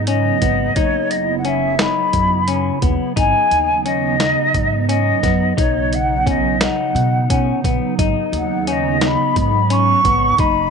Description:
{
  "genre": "progressive instrumental, band music in an uneven meter",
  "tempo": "175 BPM (eighths)",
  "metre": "7/8",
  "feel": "straight",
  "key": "G# minor",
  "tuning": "A4 = 440 Hz",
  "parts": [
    { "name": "mellow concert flute", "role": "melody", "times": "0.0-10.7 s", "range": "C#5 to C#6", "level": "-18 LUFS", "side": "equal", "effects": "none" },
    { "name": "hollow soft pad", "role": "accompaniment", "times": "0.0-10.7 s", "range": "C#3 to E4", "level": "-23 LUFS", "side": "right 13 dB", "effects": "ensemble chorus" },
    { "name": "upright bass", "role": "bass", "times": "0.0-10.7 s", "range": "F#1 to B2", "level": "-22 LUFS", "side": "right 1 dB", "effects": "none" },
    { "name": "semi-hollow electric guitar", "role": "arpeggios", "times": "0.1-10.7 s", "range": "B3 to D#4", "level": "-22 LUFS", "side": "left 12 dB", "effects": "none" },
    { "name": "boom bap sampler-style drum kit", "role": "drums", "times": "0.1-10.5 s", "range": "hi-hat, kick drum, snare drum", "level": "-21 LUFS", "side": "right 1 dB", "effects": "none" }
  ],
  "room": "moderate spring reverb, RT60 1.7 s",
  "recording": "1960s-style stereo with parts hard left and right, nothing above 10.8 kHz",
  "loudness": "-14 LUFS",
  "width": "side -6 dB against mid",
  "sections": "0.0-10.7 A section",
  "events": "none",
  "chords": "0.0 G#m7; 0.8 F#7sus4; 3.2 G#m7; 5.6 Badd9; 8.0 G#m7",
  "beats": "0.08 0.42 | 0.76 1.11 1.45 1.79 2.14 2.48 2.83 | 3.17 3.51 3.86 4.20 4.54 4.89 5.23 | 5.58 5.92 6.26 6.61 6.95 7.29 7.64 | 7.98 8.32 8.67 9.01 9.36 9.70 10.04 | 10.39"
}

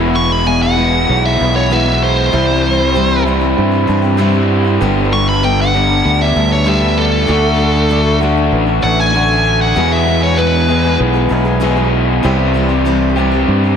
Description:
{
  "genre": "folk rock and heartland rock",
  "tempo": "97 BPM",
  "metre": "4/4",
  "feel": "straight",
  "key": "unclear",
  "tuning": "A4 = 442 Hz",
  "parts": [
    { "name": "bright reed electric piano", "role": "accompaniment", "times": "0.0-13.8 s", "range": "E4 to A5", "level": "-24 LUFS", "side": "right 7 dB", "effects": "tape echo" },
    { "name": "picked steel-string acoustic guitar", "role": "accompaniment", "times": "0.0-13.8 s", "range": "E2 to A4", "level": "-20 LUFS", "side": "left 5 dB", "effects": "tape echo" },
    { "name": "crunchy overdriven guitar", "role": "riff", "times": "0.0-13.8 s", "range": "E2 to G#4", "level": "-16 LUFS", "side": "left 1 dB", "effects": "tape echo" },
    { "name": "fingered electric bass", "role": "bass", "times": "0.0-13.8 s", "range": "E1 to G2", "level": "-16 LUFS", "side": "right 1 dB", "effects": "none" },
    { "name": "biting lead guitar", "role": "melody", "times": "0.2-11.0 s", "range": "A4 to C#6", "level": "-16 LUFS", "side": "equal", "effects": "overdrive, tape echo" }
  ],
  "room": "light reverb",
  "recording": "echo-heavy mix",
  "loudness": "-11 LUFS",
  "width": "side -7 dB against mid",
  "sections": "0.0-13.8 A section",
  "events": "lead electric guitar solo 0.0-13.8; reed electric piano fill 3.6-4.8",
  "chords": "0.0 E; 2.3 C; 4.8 Gadd9; 7.3 D; 9.8 E; 12.2 C",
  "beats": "0.46 1.08 1.70 | 2.33 2.95 3.57 4.19 | 4.81 5.43 6.05 6.67 | 7.29 7.91 8.53 9.15 | 9.77 10.38 11.00 11.62 | 12.24 12.86 13.48"
}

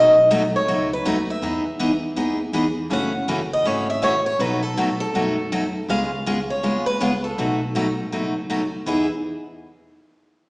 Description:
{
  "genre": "acoustic string swing (jazz manouche)",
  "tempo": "161 BPM",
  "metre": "4/4",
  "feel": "swing 62% on 8ths",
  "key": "E major",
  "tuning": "A4 = 440 Hz",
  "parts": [
    { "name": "picked swing-style acoustic guitar", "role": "melody", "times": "0.0-9.1 s", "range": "E4 to F#5", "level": "-20 LUFS", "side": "equal", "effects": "none" },
    { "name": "picked steel-string acoustic guitar", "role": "accompaniment", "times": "0.0-9.1 s", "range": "B2 to G#4", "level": "-22 LUFS", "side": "equal", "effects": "none" },
    { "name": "upright bass", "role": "bass", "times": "0.0-9.1 s", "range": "F#1 to F#2", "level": "-33 LUFS", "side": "equal", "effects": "none" }
  ],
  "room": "wet recital hall reverb, RT60 1.6 s",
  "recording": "recorded in a church or concert hall, small speaker sound",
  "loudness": "-19 LUFS",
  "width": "side -25 dB against mid",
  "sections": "0.0-2.9 A section; 2.9-8.9 B section; 8.9-10.4 C section",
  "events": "none",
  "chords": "0.0 B7; 1.4 Emaj7; 2.9 F#m7; 4.4 B7; 5.9 C#9; 7.4 B7; 8.9 Emaj7",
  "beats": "0.30 0.67 1.05 | 1.42 1.79 2.16 2.54 | 2.91 3.28 3.65 4.02 | 4.40 4.77 5.14 5.51 | 5.89 6.26 6.63 7.00 | 7.38 7.75 8.12 8.49 | 8.87"
}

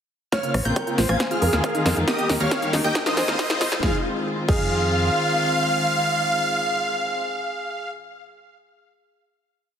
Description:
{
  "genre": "uplifting trance",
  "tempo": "137 BPM",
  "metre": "4/4",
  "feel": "straight",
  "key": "F minor",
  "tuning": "A4 = 439 Hz",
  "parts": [
    { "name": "supersaw chords", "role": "melody", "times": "0.3-7.9 s", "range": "G4 to Ab5", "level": "-24 LUFS", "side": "right 1 dB", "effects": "sidechain pumping, low-pass filter, ping-pong delay" },
    { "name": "supersaw stab", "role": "second line", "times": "0.3-7.9 s", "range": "Eb6 to Ab6", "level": "-34 LUFS", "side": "equal", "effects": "none" },
    { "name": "warm concert grand piano", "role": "second line", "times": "0.3-7.9 s", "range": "Ab4 to Db5", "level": "-31 LUFS", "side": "right 2 dB", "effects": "digital delay" },
    { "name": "analog pluck", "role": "arpeggios", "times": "0.3-4.6 s", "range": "Eb4 to Bb5", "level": "-32 LUFS", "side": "right 1 dB", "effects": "none" },
    { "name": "big-room dance drum kit", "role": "drums", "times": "0.3-4.6 s", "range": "crash cymbal, hi-hat, rim click, snare drum", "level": "-26 LUFS", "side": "equal", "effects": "none" },
    { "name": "electronic kick drum", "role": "drums", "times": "0.3-4.6 s", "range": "none", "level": "-26 LUFS", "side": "equal", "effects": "high-pass filter on kick, high-pass filter on room" },
    { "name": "riser", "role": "sound effects", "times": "1.3-3.8 s", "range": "none", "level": "-34 LUFS", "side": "left 2 dB", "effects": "none" },
    { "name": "warm chamber string section", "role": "sustained chords", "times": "0.4-7.2 s", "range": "Db3 to G4", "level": "-27 LUFS", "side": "left 2 dB", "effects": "sidechain pumping" },
    { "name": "tight sequencer bass", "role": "bass", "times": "0.5-5.1 s", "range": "Bb1 to F2", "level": "-25 LUFS", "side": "equal", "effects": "sidechain pumping" }
  ],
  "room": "light reverb",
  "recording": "heavily compressed radio sound, high-pass filter",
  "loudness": "-20 LUFS",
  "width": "side -8 dB against mid",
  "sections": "0.3-3.8 build; 3.8-7.3 final chord",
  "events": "build-up 0.3-3.8; drum fill 0.3-3.8; filter sweep on supersaw synth 0.3-3.8; filter sweep on synth pluck 0.3-3.8; filter sweep 0.3-3.8",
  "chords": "0.3 Bbmadd9; 1.2 Fm7; 2.1 Eb; 3.0 Fm7",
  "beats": "| 0.32 0.76 1.20 1.64 | 2.08 2.51 2.95 3.39 | 3.83 4.27 4.70 5.14 | 5.58 6.02 6.46 6.89"
}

